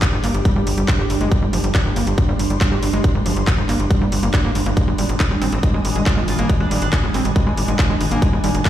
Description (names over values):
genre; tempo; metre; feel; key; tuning
psychedelic trance; 139 BPM; 4/4; straight; unclear; A4 = 442 Hz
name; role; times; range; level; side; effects
swarming drone; sustained chords; 0.0-8.7 s; G3 to D4; -26 LUFS; right 2 dB; built-in reverb, sidechain pumping
overdriven acid bass; riff; 0.0-8.7 s; F3 to G4; -25 LUFS; equal; auto-pan, sidechain pumping, ping-pong delay
big-room dance drum kit; drums; 0.0-8.7 s; handclaps, hi-hat; -26 LUFS; equal; overdrive, studio ambience
electronic kick drum; drums; 0.0-8.7 s; none; -16 LUFS; equal; studio ambience
ethereal airy pad; texture; 0.0-8.7 s; Eb3 to F6; -27 LUFS; right 1 dB; ensemble chorus, built-in reverb, sidechain pumping
tight sequencer bass; bass; 0.1-8.6 s; G1 to Ab1; -20 LUFS; equal; none
metallic wobble bass; second line; 5.4-6.9 s; C4 to F4; -32 LUFS; right 3 dB; chorus, cassette tape, sidechain pumping, high-pass filter, dub echo
room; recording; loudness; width
light reverb; played on a big sound system in a bare room, stone room reverb; -16 LUFS; side -12 dB against mid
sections
0.0-8.7 A section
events
filter sweep on acid bass 0.0-8.7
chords
0.0 G5; 4.8 Ab5